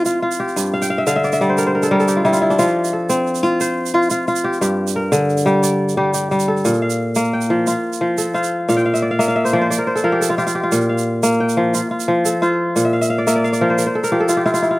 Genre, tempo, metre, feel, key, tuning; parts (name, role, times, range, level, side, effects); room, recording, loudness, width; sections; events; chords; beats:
west african traditional, West African string and xylophone music; 118 BPM (dotted quarters); 12/8; straight; A4 = 436 Hz
kora; arpeggios; 0.0-14.8 s; G2 to G5; -15 LUFS; equal
tube shaker; percussion; 0.1-14.7 s; -27 LUFS; right 11 dB
light reverb; recorded outdoors, with no room sound; -15 LUFS; side -19 dB against mid
0.0-6.6 A section; 6.6-14.8 B section
kora fill 0.7-2.6, 8.7-10.7, 12.8-14.8
0.0 F; 0.6 G5; 2.6 F; 4.6 Gm; 6.6 Bb5; 7.7 F; 8.7 Bb5; 9.7 N.C.; 10.7 Bb5; 11.7 F; 12.8 Bb5; 13.8 N.C.
0.05 | 0.56 1.06 1.57 2.08 | 2.59 3.09 3.60 4.11 | 4.62 5.12 5.63 6.14 | 6.65 7.16 7.66 8.17 | 8.68 9.19 9.70 10.21 | 10.72 11.23 11.74 12.25 | 12.76 13.27 13.78 14.29